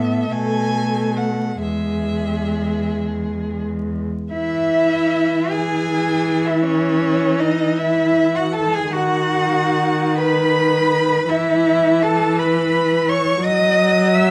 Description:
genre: classical, slow romantic movement for string quartet.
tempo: 42-58 BPM (dotted quarters).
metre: 6/8.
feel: rubato.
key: E major.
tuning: A4 = 439 Hz.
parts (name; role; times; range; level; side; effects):
rich violin; melody; 0.0-14.3 s; C#5 to E6; -30 LUFS; equal; none.
warm violin; second line; 0.0-14.3 s; G#4 to E6; -26 LUFS; equal; none.
dark viola; accompaniment; 0.0-14.3 s; D#3 to B3; -22 LUFS; equal; none.
rich cello; bass; 0.0-14.3 s; E2 to E5; -22 LUFS; equal; none.
room: moderate recital hall reverb, RT60 1.7 s.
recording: close, detailed microphones, vinyl crackle.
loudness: -18 LUFS.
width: mono.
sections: 0.0-4.3 A section; 4.3-14.3 A section.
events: none.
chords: 0.3 F#madd11/B; 1.6 E; 6.6 F#7(no3)/E (rootless); 8.9 B/D#; 11.3 E5; 13.4 D#m/F#.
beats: 0.32 | 1.63 3.00 | 4.33 5.51 | 6.65 7.79 | 8.93 10.19 | 11.30 12.39 | 13.44.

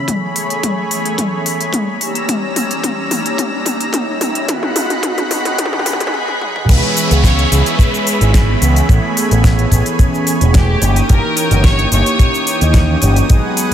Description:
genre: nu-disco, nu disco.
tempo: 109 BPM.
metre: 4/4.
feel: straight.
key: unclear.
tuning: A4 = 440 Hz.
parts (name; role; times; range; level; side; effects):
mellow synth brass; accompaniment; 0.0-13.7 s; D#3 to G#4; -20 LUFS; right 1 dB; chorus, cassette tape, sidechain pumping, tape echo.
lush unison pad; sustained chords; 0.0-13.7 s; G3 to E6; -21 LUFS; equal; chorus, sidechain pumping.
riser and downlifter; sound effects; 0.0-11.1 s; none; -25 LUFS; equal; none.
kick drum; drums; 0.1-13.4 s; none; -12 LUFS; equal; high-pass filter on kick, high-pass filter on snare, high-pass filter on room.
pop drum kit; drums; 0.1-13.7 s; crash cymbal, hi-hat, shaker, snare drum, toms; -20 LUFS; left 1 dB; none.
clear studio violin section; melody; 6.1-13.0 s; G4 to C#5; -21 LUFS; equal; tape echo.
picked electric bass with an envelope filter; bass; 6.7-13.7 s; E1 to D#2; -13 LUFS; equal; tube saturation, sidechain pumping.
room: light reverb, small room ambience.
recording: high-pass filter.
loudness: -12 LUFS.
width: side -10 dB against mid.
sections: 0.0-6.7 A section; 6.7-13.7 B section.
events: build-up 0.0-6.7; drum fill 0.0-6.1, 6.1-6.7; riser 0.0-6.1; filter sweep on analog polysynth 0.0-6.7; drop 6.7-13.7.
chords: 0.1 Amaj9; 2.0 D#7b9; 4.5 G#m7; 6.7 C#m7; 8.9 Amaj9; 10.8 D#7b9/G.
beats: | 0.09 0.64 1.19 1.74 | 2.29 2.84 3.39 3.94 | 4.49 5.04 5.59 6.14 | 6.69 7.24 7.79 8.34 | 8.89 9.44 9.99 10.54 | 11.09 11.64 12.20 12.75 | 13.30.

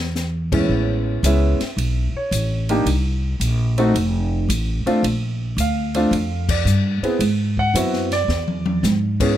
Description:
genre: jazz piano trio.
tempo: 110 BPM.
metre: 4/4.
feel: swing 68% on 8ths.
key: unclear.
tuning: A4 = 440 Hz.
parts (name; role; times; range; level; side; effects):
upright bass; bass; 0.0-9.4 s; F1 to G#2; -20 LUFS; equal; none.
open jazz drum kit; drums; 0.2-9.3 s; crash cymbal, hi-hat, kick drum, ride cymbal, snare drum, toms; -27 LUFS; left 2 dB; none.
warm concert grand piano; melody; 0.5-9.4 s; A2 to F#5; -21 LUFS; equal; plate reverb.
room: light reverb.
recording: none.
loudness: -18 LUFS.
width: side -12 dB against mid.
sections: 0.7-9.4 A section.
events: band accent 6.4; drum fill 8.3-8.8.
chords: 0.0 E6; 0.7 Amaj9; 2.9 C7(no3); 4.0 F; 5.0 Bb; 7.2 G#m7b13.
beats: 0.15 | 0.69 1.24 1.78 2.32 | 2.87 3.41 3.95 4.50 | 5.04 5.58 6.12 6.67 | 7.21 7.75 8.29 8.84.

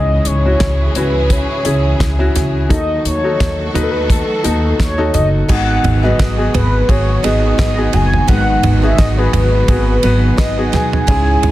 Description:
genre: piano-driven pop.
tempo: 86 BPM.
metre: 4/4.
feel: swing 56% on 16ths.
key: unclear.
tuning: A4 = 440 Hz.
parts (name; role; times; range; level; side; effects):
mellow horn-like synth lead; melody; 0.0-11.5 s; A4 to G#5; -19 LUFS; equal; chorus.
warm concert grand piano; accompaniment; 0.0-11.5 s; G#2 to B4; -19 LUFS; left 2 dB; none.
warm studio string section; sustained chords; 0.0-11.5 s; C#3 to A4; -26 LUFS; equal; none.
upright bass; bass; 0.0-11.5 s; F#1 to D#2; -16 LUFS; equal; none.
damped 70s drum kit; drums; 0.3-11.5 s; crash cymbal, hi-hat, kick drum, ride cymbal, snare drum, toms; -17 LUFS; equal; none.
picked steel-string acoustic guitar; riff; 5.5-11.5 s; G#2 to G#4; -22 LUFS; right 6 dB; none.
room: light reverb.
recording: dense, heavily limited modern master.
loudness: -12 LUFS.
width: side -15 dB against mid.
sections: 0.0-5.5 A section; 5.5-11.5 B section.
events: none.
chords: 0.0 C#m; 2.7 D#dim; 5.5 G#m7.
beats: 0.61 1.30 2.00 | 2.70 3.40 4.10 4.80 | 5.49 6.19 6.89 7.59 | 8.29 8.99 9.69 10.38 | 11.08.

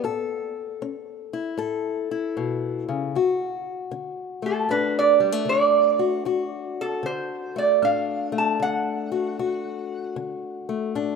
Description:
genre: acoustic country blues, solo or duo.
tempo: 77 BPM.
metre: 4/4.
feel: swing 65% on 8ths.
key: D major.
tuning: A4 = 438 Hz.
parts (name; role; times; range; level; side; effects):
fingerpicked acoustic archtop guitar; accompaniment; 0.0-11.2 s; D2 to A4; -26 LUFS; left 6 dB; none.
lap resonator guitar; melody; 4.5-10.1 s; A4 to A5; -21 LUFS; right 4 dB; none.
room: moderate plate reverb, RT60 3.2 s.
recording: rough home demo mix.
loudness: -22 LUFS.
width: side -5 dB against mid.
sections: 0.0-3.1 A section; 3.1-11.2 B section.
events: none.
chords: 0.0 A; 3.1 D.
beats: | 0.04 0.81 1.59 2.37 | 3.15 3.93 4.71 5.49 | 6.27 7.05 7.83 8.61 | 9.39 10.18 10.96.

